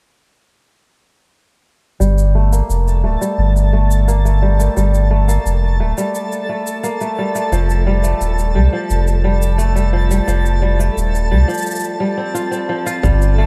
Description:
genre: folktronica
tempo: 87 BPM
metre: 4/4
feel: straight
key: G minor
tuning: A4 = 442 Hz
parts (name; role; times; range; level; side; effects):
- kora; arpeggios; 2.0-13.5 s; F3 to F4; -22 LUFS; equal; low-pass filter, delay
- warm sub bass; bass; 2.0-13.5 s; D1 to C2; -16 LUFS; equal; none
- shaker; drums; 2.0-13.4 s; none; -33 LUFS; equal; none
- twinkling granular texture; texture; 2.9-13.5 s; A4 to A5; -29 LUFS; equal; built-in reverb
- electronic kick drum; drums; 13.0-13.2 s; none; -20 LUFS; equal; none
room: light reverb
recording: none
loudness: -16 LUFS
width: mono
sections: 2.0-13.5 A section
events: filter sweep on sub bass 2.0-13.5; filter sweep on kora 2.0-13.5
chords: 2.0 Gmadd9; 7.5 Fadd9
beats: | 2.01 2.70 3.39 4.08 | 4.77 5.46 6.14 6.83 | 7.53 8.21 8.90 9.59 | 10.28 10.97 11.66 12.35 | 13.04

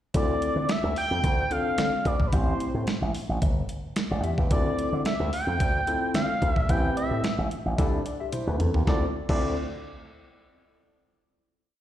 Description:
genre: early-eighties boogie funk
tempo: 110 BPM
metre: 4/4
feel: straight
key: D dorian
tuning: A4 = 440 Hz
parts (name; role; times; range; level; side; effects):
- overdriven tine electric piano; accompaniment; 0.1-9.5 s; B3 to G5; -32 LUFS; left 2 dB; wide subtle chorus, slapback echo
- slap bass with an envelope filter; bass; 0.1-9.5 s; G1 to D3; -28 LUFS; equal; none
- detuned 8-bit digital drum machine; drums; 0.1-9.4 s; crash cymbal, hi-hat, kick drum, snare drum, toms; -27 LUFS; equal; none
- expressive synth lead; melody; 0.2-9.5 s; B4 to G5; -29 LUFS; equal; chorus, slapback echo
room: light reverb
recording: live gig heard through the venue's PA, recital hall reverb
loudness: -23 LUFS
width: side -12 dB against mid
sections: 0.1-8.9 verse; 8.9-11.1 final chord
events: drum fill 8.3-8.9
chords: 0.1 Dm9; 2.3 Am7; 4.5 Dm9; 6.7 Am9; 7.8 C69; 8.9 Dm9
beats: | 0.15 0.69 1.24 1.78 | 2.33 2.87 3.42 3.96 | 4.51 5.05 5.60 6.15 | 6.69 7.24 7.78 8.33 | 8.87 9.42

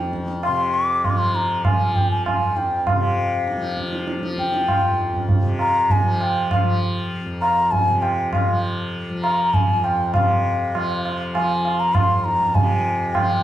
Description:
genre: indian classical, Hindustani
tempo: 99 BPM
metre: 3/4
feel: straight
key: F raga kafi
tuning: A4 = 440 Hz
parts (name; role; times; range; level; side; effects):
- bansuri; melody; 0.0-13.4 s; F5 to D6; -20 LUFS; left 1 dB; none
- tanpura; drone; 0.0-13.4 s; F2 to F3; -26 LUFS; left 1 dB; none
- tabla; percussion; 0.1-13.4 s; none; -22 LUFS; right 2 dB; none
room: moderate recital hall reverb, RT60 1.4 s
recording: dark, warm production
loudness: -18 LUFS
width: side -12 dB against mid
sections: 0.0-10.1 A section; 10.1-13.4 B section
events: none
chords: none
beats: 0.43 | 1.04 1.65 2.26 | 2.87 3.48 4.09 | 4.69 5.30 5.91 | 6.51 7.12 7.72 | 8.33 8.93 9.54 | 10.14 10.74 11.34 | 11.95 12.54 13.14

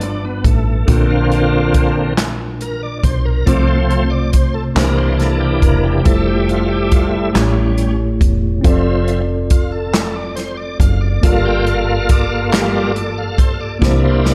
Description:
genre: slow gospel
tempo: 46 BPM (dotted quarters)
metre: 6/8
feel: straight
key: F major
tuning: A4 = 445 Hz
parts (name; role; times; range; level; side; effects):
- mellow tine electric piano; accompaniment; 0.0-14.3 s; G2 to D5; -22 LUFS; equal; none
- bright tonewheel organ; sustained chords; 0.0-14.3 s; D3 to G5; -21 LUFS; equal; slow rotary speaker, chorus vibrato
- fingered electric bass; bass; 0.0-14.3 s; E1 to C2; -21 LUFS; equal; none
- swinging big-band drum kit; drums; 0.0-14.3 s; hi-hat, kick drum, snare drum; -19 LUFS; equal; none
- group handclap; percussion; 2.2-12.9 s; none; -27 LUFS; equal; none
room: light reverb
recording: dark, warm production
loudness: -15 LUFS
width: mono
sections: 0.0-14.3 A section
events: tonewheel organ solo 0.0-14.3; drum fill 13.8-14.3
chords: 0.0 G7; 0.9 Bbmaj7; 3.5 F/C; 4.8 C7; 6.1 Fmaj7; 7.3 A7; 8.6 Dm7/F; 11.2 Gm7; 13.8 C7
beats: | 0.88 2.18 | 3.47 4.76 | 6.06 7.35 | 8.64 9.94 | 11.23 12.53 | 13.82

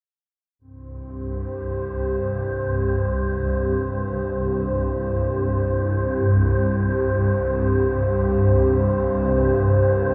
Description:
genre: dark ambient drone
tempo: free time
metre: none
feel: none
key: unclear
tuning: A4 = 442 Hz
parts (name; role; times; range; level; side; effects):
- dark analog pad; sustained chords; 0.6-10.1 s; C4 to C5; -27 LUFS; equal; chorus
- swarming drone; drone; 0.9-10.1 s; C2 to G2; -24 LUFS; equal; built-in reverb
- wind-like tuned noise texture; texture; 1.2-10.1 s; C5; -30 LUFS; equal; built-in reverb
room: wet spring reverb, RT60 2.6 s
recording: none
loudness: -22 LUFS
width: mono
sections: 0.6-10.1 A section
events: none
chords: 0.6 C5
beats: free time

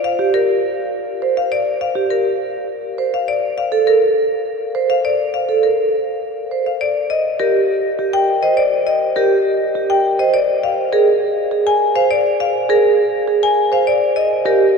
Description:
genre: classical, minimalist pattern music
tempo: 102 BPM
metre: 3/4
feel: straight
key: unclear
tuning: A4 = 440 Hz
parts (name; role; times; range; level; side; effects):
- marimba with hard mallets; melody; 0.0-14.6 s; Bb4 to Ab5; -17 LUFS; left 5 dB; none
- vibraphone with soft mallets; arpeggios; 0.2-14.6 s; G4 to C5; -17 LUFS; right 4 dB; none
room: wet cathedral reverb, RT60 5.4 s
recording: dark, warm production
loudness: -14 LUFS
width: side -5 dB against mid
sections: 0.0-6.8 A section; 6.8-14.8 B section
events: none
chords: 0.0 G7(no3); 3.3 Bbmaj7(no3) (rootless); 6.8 Cm; 10.3 Bb7(no3) (rootless); 13.9 Cm7 (rootless)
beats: 0.34 0.93 | 1.52 2.10 2.69 | 3.28 3.87 4.46 | 5.05 5.63 6.22 | 6.81 7.40 7.99 | 8.57 9.16 9.75 | 10.34 10.93 11.52 | 12.11 12.69 13.28 | 13.87 14.46

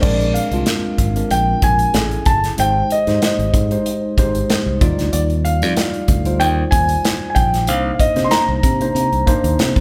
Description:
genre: polished 1980s jazz-funk pop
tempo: 94 BPM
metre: 4/4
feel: swing 54% on 16ths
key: Eb major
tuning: A4 = 440 Hz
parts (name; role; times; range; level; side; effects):
- dark concert grand piano; melody; 0.0-9.8 s; D5 to C6; -22 LUFS; equal; none
- mellow tine electric piano; accompaniment; 0.0-9.8 s; G3 to D5; -24 LUFS; equal; none
- modern bright fingered electric bass; bass; 0.0-9.8 s; Gb1 to C3; -23 LUFS; equal; none
- modern studio drum kit; drums; 0.0-9.8 s; crash cymbal, hi-hat, kick drum, snare drum; -21 LUFS; equal; none
room: moderate large studio reverb, RT60 1.2 s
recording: band playing live in one room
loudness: -17 LUFS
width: mono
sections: 0.0-9.8 A section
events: none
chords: 0.0 Bb9; 1.9 Amaj7; 2.6 Abmaj7; 4.8 Ebmaj9; 7.7 Cm9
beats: | 0.03 0.67 1.30 1.94 | 2.58 3.22 3.85 4.49 | 5.13 5.77 6.40 7.04 | 7.68 8.32 8.95 9.59

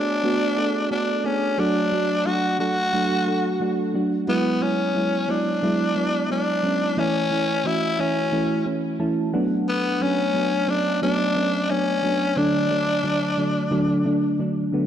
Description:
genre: pop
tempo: 89 BPM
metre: 4/4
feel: straight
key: unclear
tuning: A4 = 440 Hz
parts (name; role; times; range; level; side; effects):
- raspy tenor saxophone; melody; 0.0-14.4 s; B3 to F#4; -24 LUFS; left 2 dB; none
- mellow FM electric piano; accompaniment; 0.0-14.9 s; D3 to A5; -22 LUFS; right 1 dB; chorus
room: wet plate reverb, RT60 3.0 s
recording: dark, warm production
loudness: -20 LUFS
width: side -9 dB against mid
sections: 0.0-14.9 A section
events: FM electric piano fill 8.7-9.7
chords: 0.0 Bm7; 1.6 D; 4.3 Eadd9; 7.0 A; 9.3 Bm7; 12.4 D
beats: 0.24 0.91 | 1.58 2.26 2.93 3.61 | 4.28 4.96 5.63 6.30 | 6.98 7.65 8.33 9.00 | 9.68 10.35 11.02 11.70 | 12.37 13.04 13.72 14.39

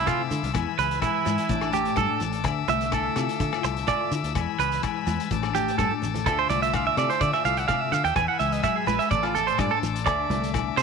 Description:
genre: highlife guitar band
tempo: 126 BPM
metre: 4/4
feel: straight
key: D minor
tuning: A4 = 440 Hz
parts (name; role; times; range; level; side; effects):
- mellow electric guitar; accompaniment; 0.0-10.8 s; A2 to B4; -31 LUFS; left 14 dB; ensemble chorus
- overdriven combo organ; sustained chords; 0.0-10.8 s; E5 to E6; -33 LUFS; left 12 dB; none
- semi-hollow electric guitar; arpeggios; 0.0-10.8 s; E4 to G#5; -25 LUFS; right 10 dB; tape echo
- fingered electric bass; bass; 0.0-10.8 s; A1 to D3; -30 LUFS; left 2 dB; none
- vintage drum kit; drums; 0.1-10.8 s; hi-hat, kick drum, rim click; -34 LUFS; left 5 dB; none
- agogo bells; percussion; 0.1-10.8 s; none; -34 LUFS; left 16 dB; none
- congas; percussion; 0.1-10.4 s; none; -37 LUFS; right 9 dB; none
- shekere; percussion; 0.1-10.8 s; none; -34 LUFS; right 4 dB; none
room: light reverb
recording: 1960s-style stereo with parts hard left and right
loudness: -22 LUFS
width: side -5 dB against mid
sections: 0.0-10.8 A section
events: clean electric guitar solo 0.0-10.8; drum fill 5.8-6.3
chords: 0.0 Dsus2; 0.5 E; 1.5 Asus4; 2.5 Dmadd9; 4.4 E; 5.3 Asus4; 6.3 Dmadd9; 8.2 E; 9.1 Asus4; 10.1 Dsus2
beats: 0.07 | 0.55 1.02 1.50 1.97 | 2.45 2.93 3.40 3.88 | 4.36 4.83 5.31 5.78 | 6.26 6.74 7.21 7.69 | 8.16 8.64 9.12 9.59 | 10.07 10.54

